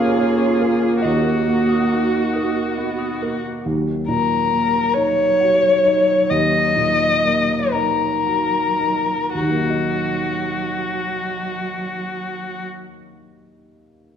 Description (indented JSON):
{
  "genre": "neoclassical piano and strings",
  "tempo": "35-47 BPM (dotted quarters)",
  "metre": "6/8",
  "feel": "rubato",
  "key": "Eb minor",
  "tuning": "A4 = 441 Hz",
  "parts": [
    { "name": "muted violin", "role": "melody", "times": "0.0-12.6 s", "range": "Gb4 to Eb5", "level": "-19 LUFS", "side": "left 3 dB", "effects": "none" },
    { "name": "muted cello", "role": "second line", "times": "0.0-12.6 s", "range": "Gb3 to Gb4", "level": "-28 LUFS", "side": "right 4 dB", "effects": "none" },
    { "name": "dark upright piano", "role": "accompaniment", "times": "0.0-14.2 s", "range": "Eb2 to F5", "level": "-23 LUFS", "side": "right 1 dB", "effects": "none" },
    { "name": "muted viola", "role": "accompaniment", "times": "0.0-3.6 s", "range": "Bb3 to Cb4", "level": "-22 LUFS", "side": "right 3 dB", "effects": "none" },
    { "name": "warbly tape-like pad", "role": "sustained chords", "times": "0.0-3.6 s", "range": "Gb4 to Eb5", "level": "-28 LUFS", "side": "right 3 dB", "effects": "chorus, built-in reverb" },
    { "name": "marimba with hard mallets", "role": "arpeggios", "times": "0.0-3.6 s", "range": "Db4 to Eb5", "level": "-28 LUFS", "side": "left 3 dB", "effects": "none" }
  ],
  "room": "wet recital hall reverb, RT60 1.5 s",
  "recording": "recorded in a church or concert hall",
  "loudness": "-17 LUFS",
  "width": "side -8 dB against mid",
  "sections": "0.0-3.6 A section; 3.6-9.3 B section; 9.3-12.6 C section",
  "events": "slowing down 2.3-9.3",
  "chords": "0.0 Db6/Eb; 1.0 Ebm"
}